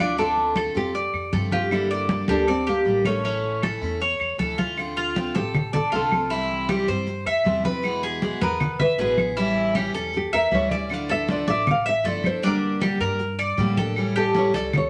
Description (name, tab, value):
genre	latin, Cuban son and guajira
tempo	157 BPM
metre	4/4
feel	straight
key	D minor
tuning	A4 = 440 Hz
part	nylon-string guitar	melody	0.0-6.1, 8.4-14.9 s	A3 to F5	-28 LUFS	equal	none
part	picked steel-string acoustic guitar	accompaniment	0.0-14.8 s	B2 to A4	-31 LUFS	equal	none
part	Cuban tres	arpeggios	0.0-14.9 s	B3 to E5	-27 LUFS	equal	none
part	upright bass	bass	0.0-14.9 s	G1 to A2	-35 LUFS	equal	none
part	congas	percussion	0.2-14.9 s	none	-30 LUFS	equal	none
part	claves	percussion	0.6-14.9 s	none	-34 LUFS	equal	none
room	moderate studio reverb, RT60 0.8 s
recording	none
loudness	-23 LUFS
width	mono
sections	0.0-4.8 A section; 4.8-14.9 B section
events	nylon-string guitar solo 4.8-14.9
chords	0.2 Dm7; 1.7 Gmadd9; 3.2 A; 4.8 Dm7; 6.3 C; 7.8 E; 9.4 A7; 10.9 Dmadd9; 12.4 Gm; 14.0 A7